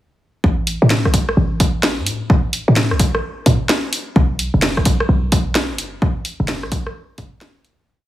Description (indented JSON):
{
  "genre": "UK garage, two-step garage",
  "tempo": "129 BPM",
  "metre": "4/4",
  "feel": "swing 64% on 16ths",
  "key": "unclear",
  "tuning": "A4 = 441 Hz",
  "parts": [
    { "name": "short 808-style bass", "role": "bass", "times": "0.4-7.3 s", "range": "F#1 to A2", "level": "-18 LUFS", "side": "equal", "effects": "none" },
    { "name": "electronic kick drum", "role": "drums", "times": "0.4-7.3 s", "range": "none", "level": "-16 LUFS", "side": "equal", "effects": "none" },
    { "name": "garage drum kit", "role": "drums", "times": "0.7-7.8 s", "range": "hi-hat, rim click, snare drum", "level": "-20 LUFS", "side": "equal", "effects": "none" }
  ],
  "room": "light reverb",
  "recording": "heavily compressed radio sound, studio reverb",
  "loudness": "-15 LUFS",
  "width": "side -14 dB against mid",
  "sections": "0.4-7.9 groove",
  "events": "fade-out 5.4-7.9",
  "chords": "none"
}